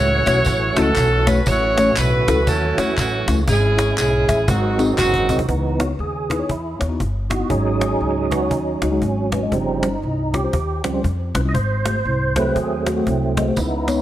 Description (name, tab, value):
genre	uptempo gospel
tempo	119 BPM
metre	4/4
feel	swing 61% on 8ths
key	C# minor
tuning	A4 = 440 Hz
part	edgy saxophone section	melody	0.0-5.5 s	B#3 to C#5	-19 LUFS	right 1 dB	none
part	mellow tine electric piano	accompaniment	0.0-14.0 s	G2 to E5	-23 LUFS	left 3 dB	phaser
part	tonewheel organ	sustained chords	0.0-14.0 s	C#3 to D#5	-23 LUFS	right 4 dB	slow rotary speaker, overdrive, chorus vibrato
part	upright bass	bass	0.0-14.0 s	F#1 to E#2	-22 LUFS	equal	none
part	cajon	drums	0.3-14.0 s	none	-23 LUFS	equal	none
part	tambourine and handclaps	percussion	0.3-5.4, 13.6-14.0 s	none	-30 LUFS	equal	none
room	light reverb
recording	none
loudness	-16 LUFS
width	side -13 dB against mid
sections	0.0-5.5 A section; 5.5-14.0 B section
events	drum fill 4.5-5.5; tonewheel organ solo 5.5-14.0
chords	0.0 A6; 3.5 C#m/G#; 4.5 G#7; 5.5 C#m9; 7.5 G#7sus4; 9.5 D#13/G; 11.5 G#7b9